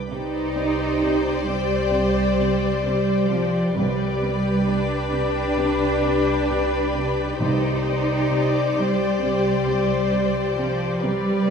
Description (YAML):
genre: cinematic, suspense film score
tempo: 66 BPM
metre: 4/4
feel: straight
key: C harmonic minor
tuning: A4 = 440 Hz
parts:
  - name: soft additive organ-like pad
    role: sustained chords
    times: 0.0-11.5 s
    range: G4 to D5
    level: -32 LUFS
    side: left 1 dB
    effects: ensemble chorus, built-in reverb
  - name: muted symphonic violin section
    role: melody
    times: 0.1-11.5 s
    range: D5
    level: -30 LUFS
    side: left 4 dB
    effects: none
  - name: muted symphonic violin section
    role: second line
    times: 0.1-11.5 s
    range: B4 to C5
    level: -30 LUFS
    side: left 6 dB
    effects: none
  - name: muted symphonic viola section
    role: accompaniment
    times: 0.1-11.5 s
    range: G4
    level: -30 LUFS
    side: right 3 dB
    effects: none
  - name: warm French horn section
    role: sustained chords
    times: 0.1-11.5 s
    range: G4 to D5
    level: -27 LUFS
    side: left 6 dB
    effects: none
  - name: muted symphonic cello section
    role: riff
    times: 0.1-11.3 s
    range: C3 to C4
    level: -34 LUFS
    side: right 2 dB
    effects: none
  - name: muted symphonic cello section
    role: bass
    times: 0.1-11.5 s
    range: F3 to Eb4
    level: -24 LUFS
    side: right 3 dB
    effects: none
  - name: muted symphonic double bass section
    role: bass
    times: 0.1-11.5 s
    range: C2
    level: -29 LUFS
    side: right 2 dB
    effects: none
  - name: timpani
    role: percussion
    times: 3.8-8.7 s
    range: C3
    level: -30 LUFS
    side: right 1 dB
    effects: none
room: moderate scoring stage reverb, RT60 1.7 s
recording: minimal, uncompressed stereo recording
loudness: -19 LUFS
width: side -6 dB against mid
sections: 0.1-11.5 A section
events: none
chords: 0.1 Cmadd9; 3.8 G/C; 7.4 Cmadd9